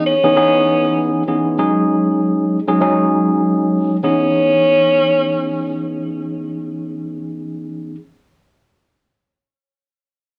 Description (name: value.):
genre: hip hop.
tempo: 98 BPM.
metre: 4/4.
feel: swing 58% on 16ths.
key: C# minor.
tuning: A4 = 436 Hz.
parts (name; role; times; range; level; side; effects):
warm tenor saxophone; melody; 0.0-5.8 s; C#4; -18 LUFS; equal; high-pass filter, low-pass filter, tape echo.
tine electric piano; accompaniment; 0.0-7.9 s; E3 to G#4; -19 LUFS; equal; high-pass filter, low-pass filter.
room: wet studio reverb, RT60 0.5 s.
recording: small room ambience.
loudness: -16 LUFS.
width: mono.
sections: 0.0-4.0 A section; 4.0-6.5 B section.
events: none.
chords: 0.0 C#m9; 1.6 G#7sus4; 4.0 C#m9.